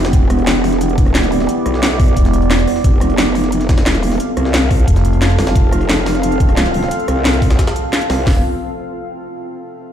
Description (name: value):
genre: dark technical drum and bass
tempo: 177 BPM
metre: 4/4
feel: straight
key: E phrygian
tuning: A4 = 440 Hz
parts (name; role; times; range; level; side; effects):
- deep dark ambient pad; sustained chords; 0.0-8.4 s; B3 to F5; -19 LUFS; right 1 dB; chorus, built-in reverb, sidechain pumping
- growl bass; bass; 0.0-8.4 s; E1 to C2; -16 LUFS; equal; chorus, overdrive, sidechain pumping
- jungle sampler-style drum kit; drums; 0.0-8.2 s; hi-hat, snare drum; -27 LUFS; equal; high-pass filter on snare, high-pass filter on hats
- drum and bass drum kit; drums; 0.1-8.3 s; hi-hat, kick drum, snare drum; -13 LUFS; equal; none
- drum and bass drum kit; drums; 0.1-8.2 s; hi-hat, rim click, snare drum; -19 LUFS; left 1 dB; none
- growling FM bass; bass; 2.2-2.7, 4.9-5.4 s; E1 to F1; -13 LUFS; equal; tube saturation
room: light reverb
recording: played on a big sound system in a bare room, large studio reverb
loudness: -12 LUFS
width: side -10 dB against mid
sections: 0.0-8.3 A section; 8.3-9.6 B section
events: drop 0.0-8.3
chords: 0.0 Em; 2.8 F; 8.3 Em